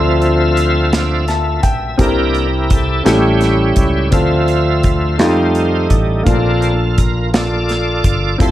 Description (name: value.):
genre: slow gospel.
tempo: 56 BPM (dotted quarters).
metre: 6/8.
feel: straight.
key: unclear.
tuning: A4 = 439 Hz.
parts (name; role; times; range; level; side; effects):
clear concert grand piano; accompaniment; 0.0-8.5 s; A2 to A5; -18 LUFS; left 1 dB; none.
bright tonewheel organ; sustained chords; 0.0-8.5 s; F3 to E5; -17 LUFS; right 1 dB; slow rotary speaker, overdrive, chorus vibrato.
fingered electric bass; bass; 0.0-8.5 s; F1 to F2; -17 LUFS; equal; none.
modern studio drum kit; drums; 0.2-8.5 s; hi-hat, kick drum, snare drum; -16 LUFS; equal; none.
room: light reverb.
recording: none.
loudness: -12 LUFS.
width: side -13 dB against mid.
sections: 0.0-8.5 A section.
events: tonewheel organ solo 0.0-8.5; grand piano fill 0.9-2.0.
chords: 0.0 Dm7; 2.0 C7; 3.1 A7; 4.1 Dm7; 5.2 F9; 6.3 Bbmaj7.